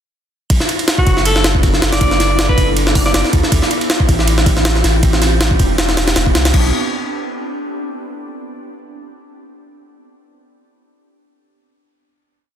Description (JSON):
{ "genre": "drum and bass, jungle", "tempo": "159 BPM", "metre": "4/4", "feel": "swing 55% on 16ths", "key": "B phrygian", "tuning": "A4 = 440 Hz", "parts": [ { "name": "ethereal airy pad", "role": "sustained chords", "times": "1.1-6.7 s", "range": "B3 to A4", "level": "-23 LUFS", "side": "right 1 dB", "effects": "ensemble chorus, built-in reverb" }, { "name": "soft dub sub bass", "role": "bass", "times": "0.5-6.7 s", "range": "E1 to D2", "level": "-16 LUFS", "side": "equal", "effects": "none" }, { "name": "jungle sampler-style drum kit", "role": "drums", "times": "0.5-6.6 s", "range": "crash cymbal, hi-hat, kick drum, ride cymbal, snare drum", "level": "-14 LUFS", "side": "equal", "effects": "none" }, { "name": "bright alto saxophone", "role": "melody", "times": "1.0-3.2 s", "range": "F#4 to D5", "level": "-21 LUFS", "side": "equal", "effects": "dub echo" } ], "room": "light reverb, digital ambience", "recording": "dense, heavily limited modern master", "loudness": "-12 LUFS", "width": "side -9 dB against mid", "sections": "0.5-6.5 drop; 6.5-8.0 final chord", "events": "drop 0.5-6.5", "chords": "0.5 Bm7; 3.5 Dm11 (rootless); 5.0 Am11; 6.5 Bm11", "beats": "| 0.50 0.88 1.26 1.63 | 2.01 2.39 2.77 3.14 | 3.52 3.90 4.28 4.65 | 5.03 5.41 5.79 6.16 | 6.54" }